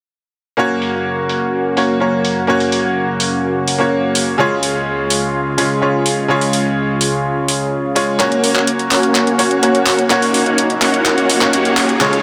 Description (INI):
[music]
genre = EDM, festival progressive house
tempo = 126 BPM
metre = 4/4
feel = straight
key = F# major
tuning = A4 = 441 Hz
[part]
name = bright concert grand piano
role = accompaniment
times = 0.6-12.2 s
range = C#3 to C#5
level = -19 LUFS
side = equal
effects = tape echo
[part]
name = lush unison pad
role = sustained chords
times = 0.6-12.2 s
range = C#2 to G#4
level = -23 LUFS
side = equal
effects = chorus
[part]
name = pop drum kit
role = drums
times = 0.8-12.2 s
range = handclaps, hi-hat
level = -21 LUFS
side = equal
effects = low-pass filter on hats, low-pass filter on snare
[part]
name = supersaw chords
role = riff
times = 8.2-12.2 s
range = G#3 to F#5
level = -18 LUFS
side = equal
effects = low-pass filter, tape echo
[part]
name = saturated sub bass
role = bass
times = 8.2-12.2 s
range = F#1 to F#2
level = -37 LUFS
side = equal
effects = high-pass filter
[part]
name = riser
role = sound effects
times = 10.6-12.2 s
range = none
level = -28 LUFS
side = equal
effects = none
[sound]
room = light reverb, digital ambience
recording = none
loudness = -15 LUFS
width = mono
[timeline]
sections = 0.6-8.2 A section; 8.2-12.2 B section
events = build-up 8.2-12.2; drum fill 8.2-12.2; filter sweep on supersaw synth 8.2-12.2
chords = 0.6 F#; 4.4 C#; 8.2 F#